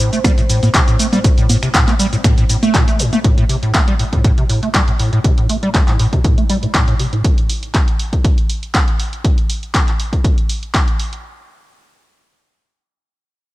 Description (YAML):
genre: acid house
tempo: 120 BPM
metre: 4/4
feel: swing 53% on 16ths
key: A minor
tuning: A4 = 440 Hz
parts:
  - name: dark analog pad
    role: sustained chords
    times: 0.0-3.3 s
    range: C5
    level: -29 LUFS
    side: equal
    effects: chorus, sidechain pumping
  - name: deep acid bass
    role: riff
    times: 0.0-7.2 s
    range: A2 to A3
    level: -17 LUFS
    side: equal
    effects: overdrive, ensemble chorus, analog delay
  - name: punchy analog drum machine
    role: drums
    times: 0.0-11.2 s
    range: congas, finger snaps, handclaps, hi-hat, shaker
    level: -20 LUFS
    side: equal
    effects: studio reverb
  - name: electronic kick drum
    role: drums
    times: 0.2-10.9 s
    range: none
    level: -15 LUFS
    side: equal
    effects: studio reverb
room: digital ambience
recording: none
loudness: -12 LUFS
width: side -18 dB against mid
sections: 0.0-3.2 A section; 3.2-11.2 B section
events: drop 0.0-3.2; filter sweep on acid bass 3.2-7.2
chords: 0.0 Am; 3.2 N.C.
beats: 0.24 0.74 | 1.24 1.74 2.24 2.74 | 3.24 3.74 4.24 4.74 | 5.24 5.74 6.24 6.74 | 7.24 7.74 8.24 8.74 | 9.24 9.74 10.24 10.74